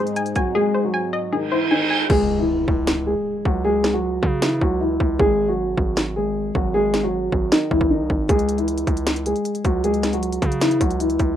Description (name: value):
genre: hip hop, trap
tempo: 155 BPM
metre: 4/4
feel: half-time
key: C# harmonic minor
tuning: A4 = 437 Hz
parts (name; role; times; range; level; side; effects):
- dark concert grand piano; melody; 0.0-11.4 s; D#3 to G#4; -20 LUFS; equal; low-pass filter, plate reverb
- hollow square pluck; accompaniment; 0.0-2.1 s; G#4 to G#5; -25 LUFS; left 3 dB; chorus, low-pass filter, plate reverb
- warm analog pad; sustained chords; 0.0-2.1 s; G#2 to D#4; -34 LUFS; equal; chorus, low-pass filter, plate reverb
- trap drum kit; drums; 0.1-11.3 s; crash cymbal, hi-hat, kick drum, snare drum; -22 LUFS; equal; vintage 12-bit sampler grit
- reverse cymbal and impact; sound effects; 1.4-3.6 s; none; -26 LUFS; right 3 dB; none
- distorted 808-style bass; bass; 2.1-11.4 s; G#1 to C#3; -26 LUFS; equal; distortion
room: moderate small room ambience, RT60 0.5 s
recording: rough home demo mix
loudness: -18 LUFS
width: side -10 dB against mid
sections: 0.0-2.1 A section; 2.1-11.4 B section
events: reverse cymbal 1.4-2.1; hi-hats muted 2.1-8.3; impact 2.1-3.6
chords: 0.0 G#; 2.1 C#m; 5.2 G#5; 8.3 C#m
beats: 0.16 | 0.55 0.94 1.32 1.71 | 2.10 2.48 2.87 3.26 | 3.65 4.03 4.42 4.81 | 5.20 5.58 5.97 6.36 | 6.74 7.13 7.52 7.91 | 8.29 8.68 9.07 9.45 | 9.84 10.23 10.61 11.00